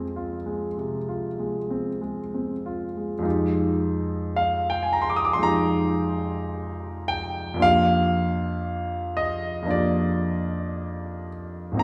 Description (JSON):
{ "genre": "classical, impressionist solo piano", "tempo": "47-58 BPM", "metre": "4/4", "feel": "rubato", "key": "F dorian", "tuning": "A4 = 440 Hz", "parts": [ { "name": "clear grand piano", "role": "solo", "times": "0.0-11.8 s", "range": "Ab1 to Eb6", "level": "-26 LUFS", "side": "equal", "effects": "none" } ], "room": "wet concert hall reverb, RT60 1.9 s", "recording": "heard from further back in the room", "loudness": "-25 LUFS", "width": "mono", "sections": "0.0-3.2 A section; 3.2-11.8 B section", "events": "none", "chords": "0.0 Fm; 3.2 Fm11; 7.6 Gm7/F" }